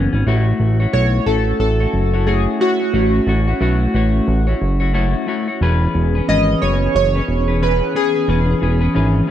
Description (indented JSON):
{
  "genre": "indie pop, bedroom pop",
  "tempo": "90 BPM",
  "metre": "4/4",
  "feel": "swing 60% on 16ths",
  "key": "unclear",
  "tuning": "A4 = 439 Hz",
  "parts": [
    { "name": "clean electric guitar", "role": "accompaniment", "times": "0.0-9.3 s", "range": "E3 to C#5", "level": "-21 LUFS", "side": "left 4 dB", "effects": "wide subtle chorus, warbly pitch drift" },
    { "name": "fat analog bass", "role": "bass", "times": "0.0-9.2 s", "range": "E1 to B1", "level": "-16 LUFS", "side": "equal", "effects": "none" },
    { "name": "hollow soft pad", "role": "sustained chords", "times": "0.7-9.3 s", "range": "E3 to G#4", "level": "-24 LUFS", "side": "right 2 dB", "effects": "chorus" },
    { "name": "chorused retro synth keys", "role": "melody", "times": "0.9-9.3 s", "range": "F#4 to D#5", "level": "-20 LUFS", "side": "right 1 dB", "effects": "wide subtle chorus, tape echo" }
  ],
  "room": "light reverb",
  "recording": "dry, close 1970s-style studio recording",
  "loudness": "-14 LUFS",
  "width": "side -11 dB against mid",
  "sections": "0.3-9.3 A section",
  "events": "none",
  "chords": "0.3 A6; 5.6 E6"
}